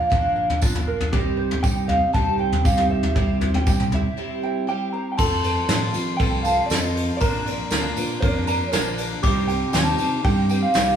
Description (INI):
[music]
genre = indie folk with a building arrangement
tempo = 118 BPM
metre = 4/4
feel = straight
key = unclear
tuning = A4 = 440 Hz
[part]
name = electric guitar through a small old amp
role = melody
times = 0.0-11.0 s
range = D5 to Bb5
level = -24 LUFS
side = right 1 dB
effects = tremolo
[part]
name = picked twelve-string acoustic guitar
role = accompaniment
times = 0.0-11.0 s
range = Bb2 to Bb4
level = -29 LUFS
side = left 1 dB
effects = none
[part]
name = ukulele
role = arpeggios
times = 0.0-11.0 s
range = F4 to Bb5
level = -30 LUFS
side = right 7 dB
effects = analog delay
[part]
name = fingered electric bass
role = bass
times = 0.1-11.0 s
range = Bb1 to F3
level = -26 LUFS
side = equal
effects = none
[part]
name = soft brush drum kit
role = drums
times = 0.1-10.9 s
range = crash cymbal, kick drum, ride cymbal, snare drum, toms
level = -23 LUFS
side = equal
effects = none
[part]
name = tambourine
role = percussion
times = 0.6-10.9 s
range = none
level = -37 LUFS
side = right 6 dB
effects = none
[part]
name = glass harmonica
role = sustained chords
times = 1.1-11.0 s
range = G3 to D5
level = -35 LUFS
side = right 1 dB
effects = none
[part]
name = glockenspiel with brass mallets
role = second line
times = 5.2-11.0 s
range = Bb5 to D6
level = -32 LUFS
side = left 7 dB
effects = none
[part]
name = bright upright piano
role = accompaniment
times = 5.2-11.0 s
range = F1 to C5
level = -34 LUFS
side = right 6 dB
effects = none
[sound]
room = moderate stone room reverb, RT60 1.2 s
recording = band playing live in one room, small room ambience, faint mains hum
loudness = -19 LUFS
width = side -8 dB against mid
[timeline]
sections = 0.0-5.2 A section; 5.2-11.0 B section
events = break 4.2-5.2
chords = 0.0 Bb; 1.1 Cm; 3.2 C; 5.2 F; 7.2 Bb; 9.2 Cm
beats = 0.11 0.61 | 1.12 1.63 2.14 2.64 | 3.15 3.66 4.17 4.67 | 5.18 5.68 6.19 6.70 | 7.20 7.71 8.22 8.72 | 9.23 9.73 10.24 10.74